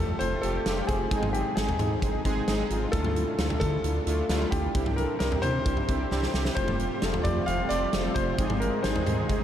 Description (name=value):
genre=synth-pop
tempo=132 BPM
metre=4/4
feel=straight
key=unclear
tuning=A4 = 444 Hz
part: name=clear concert grand piano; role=melody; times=0.0-9.4 s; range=G4 to F5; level=-31 LUFS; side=left 1 dB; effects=analog delay
part: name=analog synth brass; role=accompaniment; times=0.0-9.4 s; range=Ab3 to A4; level=-30 LUFS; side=right 1 dB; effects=chorus
part: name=round analog bass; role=bass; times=0.0-9.4 s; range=F1 to D3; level=-31 LUFS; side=equal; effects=none
part: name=huge arena drum kit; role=drums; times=0.2-9.4 s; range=hi-hat, kick drum, snare drum, toms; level=-30 LUFS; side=equal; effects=none
part: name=lush unison pad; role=sustained chords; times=6.6-9.4 s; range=C3 to Ab4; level=-35 LUFS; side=right 1 dB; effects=chorus, phaser
room=wet huge ambient reverb, RT60 8.1 s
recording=dreamy mix soaked in reverb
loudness=-24 LUFS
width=side -10 dB against mid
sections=0.0-9.4 A section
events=drum fill 6.1-6.6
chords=0.0 Fadd9; 1.1 Ab; 2.9 Dmadd9; 4.7 Cadd9; 6.6 Fadd9; 8.4 Ab